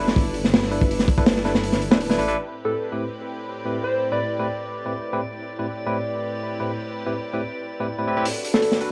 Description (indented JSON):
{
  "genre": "drum and bass, jungle",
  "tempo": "163 BPM",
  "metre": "4/4",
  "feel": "straight",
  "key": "A minor",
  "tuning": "A4 = 439 Hz",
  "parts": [
    { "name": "dark studio string section", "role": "sustained chords", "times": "0.0-8.9 s", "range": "A2 to B4", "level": "-33 LUFS", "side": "equal", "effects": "none" },
    { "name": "barky tine electric piano", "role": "stabs", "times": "0.0-8.9 s", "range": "A2 to B4", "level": "-30 LUFS", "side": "equal", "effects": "dub echo" },
    { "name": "dark detuned saw bass", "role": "bass", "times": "0.0-2.4 s", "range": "D1 to A1", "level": "-30 LUFS", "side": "equal", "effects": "none" },
    { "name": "crunchy breakbeat drum kit", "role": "drums", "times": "0.1-2.4, 8.3-8.9 s", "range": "hi-hat, kick drum, snare drum", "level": "-22 LUFS", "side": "equal", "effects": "none" },
    { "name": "drifting glass-harmonics texture", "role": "texture", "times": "3.3-8.9 s", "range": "D5", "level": "-36 LUFS", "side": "equal", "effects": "chorus, built-in reverb" },
    { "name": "soft struck synth lead", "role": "melody", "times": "2.7-4.6, 8.5-8.8 s", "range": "A4 to D5", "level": "-29 LUFS", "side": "equal", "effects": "chorus, cassette tape, dub echo" }
  ],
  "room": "wet small room reverb, RT60 0.5 s",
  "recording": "home recording on cassette",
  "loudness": "-24 LUFS",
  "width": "mono",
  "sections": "0.0-2.4 A section; 2.4-8.9 B section",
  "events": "drop 0.0-2.4; kick drops out 1.6-2.4",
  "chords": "0.0 G6; 2.4 Am7; 8.3 Bm7"
}